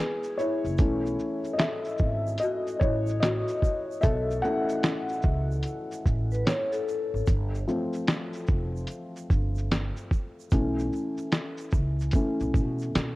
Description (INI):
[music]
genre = lo-fi hip hop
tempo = 74 BPM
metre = 4/4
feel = swing 65% on 16ths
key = B mixolydian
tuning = A4 = 439 Hz
[part]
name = vibraphone with medium mallets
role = second line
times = 0.0-0.6, 6.3-7.2 s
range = G#4 to C#5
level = -34 LUFS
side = left 2 dB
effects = tape echo
[part]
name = felt-muted upright piano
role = accompaniment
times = 0.0-13.2 s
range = E3 to F#5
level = -29 LUFS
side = left 1 dB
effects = cassette tape
[part]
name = lo-fi sampler-style drum kit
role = drums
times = 0.2-13.2 s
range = hi-hat, kick drum, shaker, snare drum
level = -25 LUFS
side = equal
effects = vintage 12-bit sampler grit
[part]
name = egg shaker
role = percussion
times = 0.2-13.2 s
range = none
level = -56 LUFS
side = right 8 dB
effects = none
[part]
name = upright bass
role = bass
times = 0.6-13.2 s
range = F1 to B2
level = -30 LUFS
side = equal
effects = none
[sound]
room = light reverb, small room ambience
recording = worn, warbling old tape, cassette tape, warbly pitch drift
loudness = -25 LUFS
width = side -19 dB against mid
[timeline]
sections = 0.0-13.2 A section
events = break 0.0-0.8; felt piano solo 0.0-13.2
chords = 0.0 F#9sus4; 0.8 B9sus4 (rootless); 7.3 G9sus4; 10.5 B9sus4